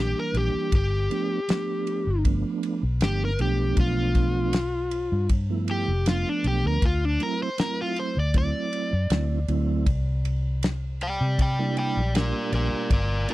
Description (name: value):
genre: straight-eighth soul blues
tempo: 79 BPM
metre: 4/4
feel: swing 54% on 16ths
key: G mixolydian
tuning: A4 = 441 Hz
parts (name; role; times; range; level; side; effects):
- overdriven semi-hollow guitar; melody; 0.0-13.3 s; D4 to G5; -28 LUFS; left 2 dB; none
- mellow tonewheel organ; accompaniment; 0.0-13.3 s; E3 to G4; -29 LUFS; right 5 dB; slow rotary speaker, chorus vibrato
- vintage muted fingered electric bass; bass; 0.0-13.3 s; F1 to C3; -25 LUFS; equal; none
- warm soul drum kit; drums; 0.3-13.3 s; kick drum, ride cymbal, snare drum; -24 LUFS; equal; none
room: little or no reverb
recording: none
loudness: -22 LUFS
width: side -17 dB against mid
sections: 0.0-13.3 A section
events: overdriven electric guitar solo 0.0-13.3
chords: 0.0 C7 (rootless); 0.7 G7; 6.8 D7; 9.9 C7